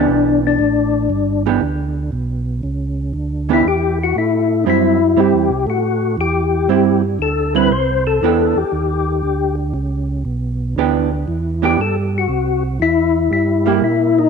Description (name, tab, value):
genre	jazz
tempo	118 BPM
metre	4/4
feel	swing 68% on 8ths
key	E minor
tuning	A4 = 440 Hz
part	percussive tonewheel organ	melody	0.0-14.3 s	D4 to C5	-16 LUFS	left 6 dB	slow rotary speaker, chorus vibrato
part	vintage hollow-body jazz guitar	accompaniment	0.0-13.8 s	E3 to G4	-18 LUFS	right 12 dB	none
part	tonewheel organ	bass	0.0-14.3 s	G1 to Bb2	-20 LUFS	right 2 dB	chorus vibrato
room	wet echo chamber reverb, RT60 2.0 s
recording	1960s-style stereo with parts hard left and right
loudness	-14 LUFS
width	side -5 dB against mid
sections	0.0-14.3 A section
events	none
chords	0.0 Em7; 4.2 Am7; 8.2 Em7; 12.3 C7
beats	| 0.09 0.59 1.10 1.61 | 2.12 2.63 3.14 3.65 | 4.15 4.66 5.17 5.68 | 6.19 6.70 7.21 7.72 | 8.22 8.73 9.24 9.75 | 10.26 10.77 11.28 11.79 | 12.30 12.80 13.31 13.82